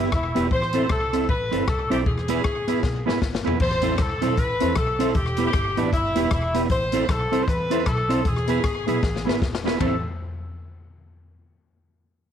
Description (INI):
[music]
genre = ska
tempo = 155 BPM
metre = 4/4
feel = swing 60% on 8ths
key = A minor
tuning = A4 = 440 Hz
[part]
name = warm horn section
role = melody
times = 0.0-10.0 s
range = D4 to C5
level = -26 LUFS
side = left 2 dB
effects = none
[part]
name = mellow electric guitar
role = accompaniment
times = 0.0-9.9 s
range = B3 to C5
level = -26 LUFS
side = right 10 dB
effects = none
[part]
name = tonewheel organ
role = stabs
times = 0.0-10.0 s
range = B3 to A4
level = -30 LUFS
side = left 10 dB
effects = chorus vibrato, slow rotary speaker
[part]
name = upright bass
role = bass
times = 0.0-10.0 s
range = E1 to E2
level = -28 LUFS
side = equal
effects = none
[part]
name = swinging big-band drum kit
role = drums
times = 0.1-9.9 s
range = crash cymbal, hi-hat, kick drum, ride cymbal, rim click, snare drum, toms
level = -26 LUFS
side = left 2 dB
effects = slapback echo
[sound]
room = moderate spring reverb, RT60 1.6 s, studio reverb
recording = 1960s-style stereo with parts hard left and right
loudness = -20 LUFS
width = side -9 dB against mid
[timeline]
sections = 0.0-3.6 A section; 3.6-9.8 B section; 9.8-11.4 C section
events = drum fill 2.8-3.6, 9.0-9.8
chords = 0.0 Em; 0.5 Am; 2.1 E; 3.6 Am; 5.2 Em; 6.7 Am; 8.2 E; 9.8 Am